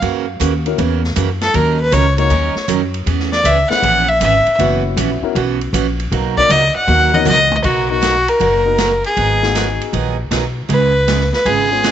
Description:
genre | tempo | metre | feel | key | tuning
country, western swing | 157 BPM | 4/4 | swing 67% on 8ths | B major | A4 = 440 Hz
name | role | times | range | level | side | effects
rich fiddle | melody | 0.0-11.9 s | F#4 to F#5 | -14 LUFS | left 1 dB | none
picked steel-string acoustic guitar | accompaniment | 0.0-11.9 s | B2 to A#4 | -21 LUFS | right 12 dB | none
upright bass | bass | 0.0-11.9 s | F#1 to F#2 | -18 LUFS | left 1 dB | none
swinging big-band drum kit | drums | 0.0-11.9 s | crash cymbal, hi-hat, kick drum, ride cymbal, snare drum, toms | -24 LUFS | left 1 dB | none
warm upright piano | accompaniment | 0.7-11.9 s | A#3 to B4 | -24 LUFS | left 13 dB | none
room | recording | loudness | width
light reverb, studio ambience | 1960s-style stereo with parts hard left and right, nothing above 7.9 kHz | -12 LUFS | side -10 dB against mid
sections
0.0-7.6 A section; 7.6-11.9 B section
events
fiddle solo 0.0-7.6; drum fill 6.9-7.6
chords
0.0 F#7; 1.5 D#m7; 3.1 E6; 4.6 F#7sus4; 6.1 Bmaj9; 7.6 Bmaj7; 9.2 G#m7; 10.7 C#7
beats
| 0.02 0.40 0.78 1.17 | 1.55 1.93 2.31 2.69 | 3.07 3.45 3.83 4.21 | 4.59 4.98 5.36 5.74 | 6.12 6.50 6.88 7.26 | 7.64 8.02 8.41 8.79 | 9.17 9.55 9.93 10.31 | 10.69 11.08 11.46 11.84

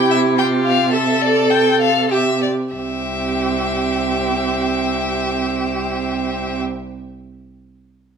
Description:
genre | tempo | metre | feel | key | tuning
quick classical-period movement for string quartet | 93-112 BPM | 4/4 | rubato | C major | A4 = 440 Hz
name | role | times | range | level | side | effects
rich violin | melody | 0.0-6.6 s | D5 to G5 | -21 LUFS | left 4 dB | none
warm violin | second line | 0.0-6.6 s | E4 to A4 | -22 LUFS | left 1 dB | none
warm viola | accompaniment | 0.0-6.6 s | C4 to A4 | -22 LUFS | right 3 dB | none
warm cello | bass | 0.0-6.6 s | C2 to C3 | -22 LUFS | right 4 dB | none
room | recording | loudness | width
moderate stone room reverb, RT60 1.3 s | minimal, uncompressed stereo recording | -16 LUFS | side -6 dB against mid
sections
0.0-2.7 A section; 2.7-7.6 B section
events
slowing down 0.0-2.7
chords
0.4 C6; 2.7 C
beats
| 0.38 0.93 1.51 2.11 | 2.75 3.36 3.96 4.56 | 5.17 5.78 6.38

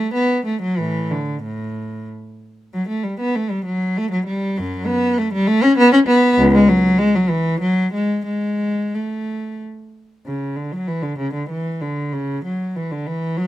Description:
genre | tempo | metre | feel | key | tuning
classical, baroque-style suite movement for unaccompanied cello | 88-101 BPM | 3/4 | rubato | unclear | A4 = 440 Hz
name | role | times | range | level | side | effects
rich cello | solo | 0.0-13.5 s | C#2 to C#4 | -17 LUFS | equal | none
room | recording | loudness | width
light reverb | minimal, uncompressed stereo recording | -17 LUFS | side -14 dB against mid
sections
0.0-10.3 A section; 10.3-13.5 B section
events
none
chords
none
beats
0.13 | 0.78 1.43 2.08 | 2.73 3.35 3.96 | 4.56 5.17 5.77 | 6.37 6.98 7.61 | 8.27 8.94 9.60 | 10.26 10.88 11.50 | 12.14 12.77 13.39

